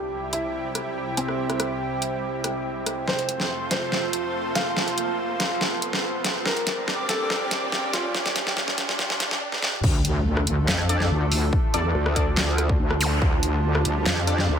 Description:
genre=heavy wobble dubstep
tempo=142 BPM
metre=4/4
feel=half-time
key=D minor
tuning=A4 = 441 Hz
part: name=felt-muted upright piano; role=melody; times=0.0-9.4 s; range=C4 to F5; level=-31 LUFS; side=equal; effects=dub echo
part: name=lush unison pad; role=sustained chords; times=0.0-14.6 s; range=C2 to D5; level=-31 LUFS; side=equal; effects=chorus, sidechain pumping
part: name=riser, impact and zap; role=sound effects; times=0.0-13.1 s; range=none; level=-33 LUFS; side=right 1 dB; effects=none
part: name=warbly tape-like pad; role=texture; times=0.0-14.6 s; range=E4 to A5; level=-32 LUFS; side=right 3 dB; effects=chorus, built-in reverb, sidechain pumping
part: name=dubstep drum kit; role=drums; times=0.3-14.5 s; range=crash cymbal, handclaps, hi-hat, rim click, snare drum, toms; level=-26 LUFS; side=equal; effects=overdrive
part: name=wobble bass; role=bass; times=9.8-14.6 s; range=D2 to E2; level=-23 LUFS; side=equal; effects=chorus, overdrive
part: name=electronic kick drum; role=drums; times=9.8-13.3 s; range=none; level=-23 LUFS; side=equal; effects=none
part: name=metallic wobble bass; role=bass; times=10.7-14.5 s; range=D2 to F2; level=-23 LUFS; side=equal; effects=chorus, overdrive
part: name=orchestra-hit-like synth stab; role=stabs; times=10.9-14.6 s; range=D4 to D5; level=-29 LUFS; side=left 2 dB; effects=built-in reverb, dub echo
room=light reverb, digital ambience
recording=high-pass filter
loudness=-22 LUFS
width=side -8 dB against mid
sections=0.0-9.8 A section; 9.8-14.6 B section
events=build-up 0.0-9.8; riser 0.0-9.4; filter sweep on felt piano 0.0-9.8; filter sweep 0.0-9.8; drum fill 3.1-9.4, 9.5-9.8; drop 9.8-14.6; impact 9.8-11.5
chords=0.0 C; 3.1 F; 6.5 Gm; 9.8 Dm

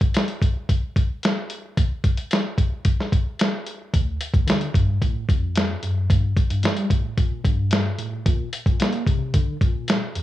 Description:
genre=indie pop, bedroom pop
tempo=111 BPM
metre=4/4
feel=straight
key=D minor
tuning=A4 = 445 Hz
part: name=lo-fi sampler-style drum kit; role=drums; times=0.0-10.2 s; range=hi-hat, kick drum, snare drum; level=-20 LUFS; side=equal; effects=none
part: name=mellow tine electric piano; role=bass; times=3.9-10.2 s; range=D2 to Bb3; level=-25 LUFS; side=equal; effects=medium stereo tremolo
room=light reverb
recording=small room ambience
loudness=-20 LUFS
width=side -14 dB against mid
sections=0.0-10.2 A section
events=none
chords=none

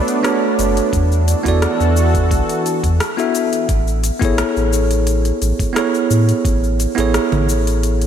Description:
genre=sunset chillout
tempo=87 BPM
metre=4/4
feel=straight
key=A major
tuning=A4 = 439 Hz
part: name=bell-like tine electric piano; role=accompaniment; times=0.0-8.1 s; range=B3 to E5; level=-18 LUFS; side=moving between left 5 dB and right 7 dB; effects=auto-pan, analog delay
part: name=lush unison pad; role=sustained chords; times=0.0-3.7 s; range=E3 to A4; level=-20 LUFS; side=equal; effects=chorus
part: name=smooth R&B drum kit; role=drums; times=0.1-8.1 s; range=cabasa, congas, hi-hat, rim click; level=-24 LUFS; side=left 1 dB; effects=overdrive
part: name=warm sub bass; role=bass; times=0.6-8.1 s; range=F#1 to A2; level=-16 LUFS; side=equal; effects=none
part: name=electronic kick drum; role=drums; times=0.9-6.6 s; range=none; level=-21 LUFS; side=equal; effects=none
room=moderate lush hall reverb, RT60 2.9 s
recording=dreamy mix soaked in reverb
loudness=-14 LUFS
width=side -9 dB against mid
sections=0.0-3.7 A section; 3.7-8.1 A section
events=none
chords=0.0 Bm9; 0.9 E9sus4; 3.7 Amaj9

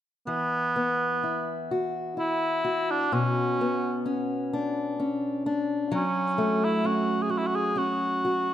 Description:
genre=celtic folk, Celtic slow air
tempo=64 BPM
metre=3/4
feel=rubato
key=unclear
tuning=A4 = 437 Hz
part: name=warm cor anglais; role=melody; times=0.3-8.5 s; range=B3 to G#4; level=-27 LUFS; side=right 1 dB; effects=slapback echo
part: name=fingerpicked steel-string acoustic guitar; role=accompaniment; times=0.3-8.5 s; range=B2 to F#4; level=-27 LUFS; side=left 1 dB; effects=none
room=moderate scoring stage reverb, RT60 1.6 s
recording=none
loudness=-24 LUFS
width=side -11 dB against mid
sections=0.3-8.5 A section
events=none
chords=0.3 Esus2; 3.1 Bmadd9; 5.9 F#m

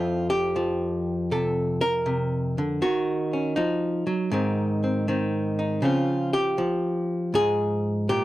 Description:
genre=solo jazz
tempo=80 BPM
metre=4/4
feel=swing 66% on 8ths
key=unclear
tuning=A4 = 440 Hz
part: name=archtop guitar, miked and amplified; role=solo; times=0.0-8.2 s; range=F2 to Bb4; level=-23 LUFS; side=equal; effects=none
room=light reverb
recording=dry, close 1970s-style studio recording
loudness=-23 LUFS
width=side -15 dB against mid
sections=0.0-8.2 A section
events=none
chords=0.0 F5; 2.8 Ebm7; 4.3 Ab; 5.8 Dbmaj7

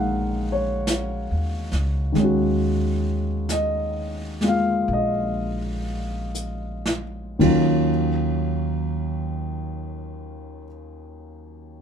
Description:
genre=jazz ballad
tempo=38-48 BPM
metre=4/4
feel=swing 69% on 8ths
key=Eb minor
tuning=A4 = 440 Hz
part: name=warm concert grand piano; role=accompaniment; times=0.0-11.8 s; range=Eb2 to Gb5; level=-23 LUFS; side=equal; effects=none
part: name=upright bass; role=bass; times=0.0-10.6 s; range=Bb1 to Eb2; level=-28 LUFS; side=equal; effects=none
part: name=jazz brush drum kit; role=drums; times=0.9-7.6 s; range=brushed snare drum, hi-hat, kick drum, ride cymbal, snare drum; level=-30 LUFS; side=right 1 dB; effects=none
room=moderate club reverb, RT60 0.6 s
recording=minimal, uncompressed stereo recording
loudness=-21 LUFS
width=side -7 dB against mid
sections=0.0-7.9 A section; 7.9-11.8 B section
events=slowing down 0.0-7.9; drum fill 6.3-7.9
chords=0.0 Ebm9

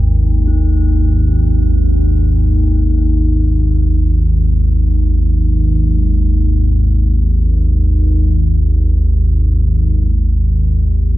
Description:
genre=dark ambient drone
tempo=free time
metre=none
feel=none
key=unclear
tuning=A4 = 440 Hz
part: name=deep rumbling drone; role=drone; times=0.0-11.2 s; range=G#1 to D#2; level=-11 LUFS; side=equal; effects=built-in reverb
part: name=bronze singing bowl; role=texture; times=0.0-11.2 s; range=D#4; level=-26 LUFS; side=left 3 dB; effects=none
room=light reverb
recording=dark, warm production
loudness=-11 LUFS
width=side -16 dB against mid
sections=0.0-11.2 A section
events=none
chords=0.0 G#5

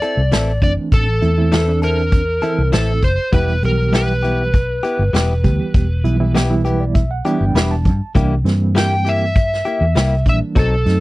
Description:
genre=straight-eighth soul blues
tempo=100 BPM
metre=4/4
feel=straight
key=E minor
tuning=A4 = 437 Hz
part: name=overdriven slide guitar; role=melody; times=0.0-11.0 s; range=A4 to G5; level=-20 LUFS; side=equal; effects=none
part: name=direct-recorded clean electric guitar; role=stabs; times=0.0-10.8 s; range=E3 to A4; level=-22 LUFS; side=left 3 dB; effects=none
part: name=vintage brush drum kit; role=drums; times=0.0-11.0 s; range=hi-hat, kick drum, snare drum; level=-17 LUFS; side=equal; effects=none
part: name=vintage muted fingered electric bass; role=bass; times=0.2-11.0 s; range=E1 to G2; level=-17 LUFS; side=equal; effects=none
part: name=reed electric piano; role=accompaniment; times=0.6-11.0 s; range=E3 to B5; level=-21 LUFS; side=right 3 dB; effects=fast tremolo
room=little or no reverb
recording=dry, close 1970s-style studio recording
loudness=-14 LUFS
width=side -19 dB against mid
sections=0.0-11.0 A section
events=reed electric piano fill 6.3-8.2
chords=0.0 Am; 3.3 Em; 8.2 C7

